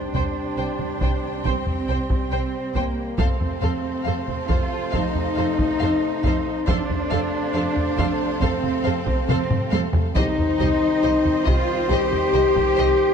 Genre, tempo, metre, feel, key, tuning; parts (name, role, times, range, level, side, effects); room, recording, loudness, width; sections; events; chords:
cinematic, epic orchestral film score; 69 BPM; 4/4; straight; C dorian; A4 = 441 Hz
mellow French horn section; sustained chords; 0.0-13.1 s; Bb3 to G4; -25 LUFS; left 5 dB
warm symphonic string section; sustained chords; 0.0-13.1 s; C4 to G5; -33 LUFS; equal
warm trombone section; sustained chords; 0.0-13.1 s; C3 to A3; -33 LUFS; right 5 dB
mellow trumpet; stabs; 0.0-13.1 s; C5; -30 LUFS; right 5 dB
rich symphonic cello section; bass; 0.0-13.1 s; Bb3 to G4; -28 LUFS; right 2 dB
dark symphonic violin section; melody; 0.1-12.9 s; Eb5 to G5; -34 LUFS; left 5 dB
warm symphonic violin section; second line; 0.1-12.8 s; C5; -36 LUFS; left 2 dB
warm studio viola section; accompaniment; 0.1-12.9 s; G4 to C5; -33 LUFS; right 2 dB
rich studio double bass section; bass; 0.1-12.9 s; C2 to F2; -28 LUFS; right 3 dB
taiko ensemble; drums; 0.1-13.1 s; -25 LUFS; equal
timpani; percussion; 10.1-11.4 s; C3; -34 LUFS; equal
moderate scoring stage reverb, RT60 2.0 s; dark, warm production; -19 LUFS; side -7 dB against mid
0.0-13.1 A section
drum fill 9.3-10.2
0.0 C5; 3.2 F; 10.2 Cm